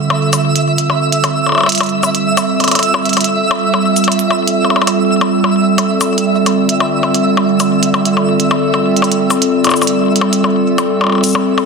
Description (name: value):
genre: IDM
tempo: 132 BPM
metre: 4/4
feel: straight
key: D minor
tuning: A4 = 440 Hz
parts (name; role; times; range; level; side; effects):
- warbly tape-like pad; sustained chords; 0.0-11.7 s; D3 to A4; -13 LUFS; right 2 dB; chorus, built-in reverb
- twinkling granular texture; texture; 0.0-11.7 s; E5; -18 LUFS; right 2 dB; built-in reverb
- electronic percussion blips, hi-hat and shaker; drums; 0.1-11.7 s; none; -16 LUFS; left 2 dB; small room reverb, soft clipping on snare, ping-pong delay
room: wet plate reverb, RT60 1.4 s, digital ambience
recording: dense, heavily limited modern master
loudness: -11 LUFS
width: side -4 dB against mid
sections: 0.0-11.7 A section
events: none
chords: 0.0 Dm7; 2.7 Fmaj7; 6.3 Dm7; 10.0 Fmaj7